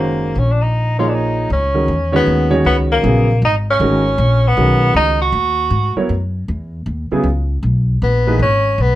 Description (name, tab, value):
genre	modal jazz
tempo	157 BPM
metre	3/4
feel	swing 65% on 8ths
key	C# dorian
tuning	A4 = 440 Hz
part	warm tenor saxophone	melody	0.0-5.9, 8.0-9.0 s	Bb3 to F#4	-17 LUFS	equal	none
part	warm concert grand piano	accompaniment	0.0-8.4 s	C#3 to Db5	-17 LUFS	right 2 dB	none
part	upright bass	bass	0.0-9.0 s	Gb1 to G#2	-17 LUFS	equal	none
room	moderate studio reverb, RT60 0.6 s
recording	none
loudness	-13 LUFS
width	side -14 dB against mid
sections	0.0-1.5 A section; 1.5-9.0 B section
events	none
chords	0.0 Ebm11; 1.5 C#9sus4